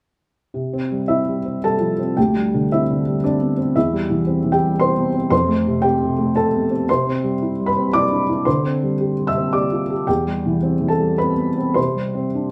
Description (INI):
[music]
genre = neoclassical minimalist piano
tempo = 113 BPM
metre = 3/4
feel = rubato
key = C major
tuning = A4 = 440 Hz
[part]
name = felt-muted upright piano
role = solo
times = 0.5-12.5 s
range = D2 to E6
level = -19 LUFS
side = equal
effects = none
[sound]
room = moderate large studio reverb, RT60 0.9 s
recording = band playing live in one room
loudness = -19 LUFS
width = mono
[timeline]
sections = 0.5-12.5 A section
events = none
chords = 0.5 C; 2.2 Gsus4/D; 3.7 C/E; 5.3 F; 6.9 C; 8.5 Gsus4/D; 10.1 C/E; 11.8 Csus2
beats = | 0.55 1.09 1.63 | 2.17 2.70 3.22 | 3.75 4.27 4.79 | 5.32 5.84 6.36 | 6.88 7.40 7.93 | 8.46 9.00 9.54 | 10.08 10.62 11.19 | 11.77 12.36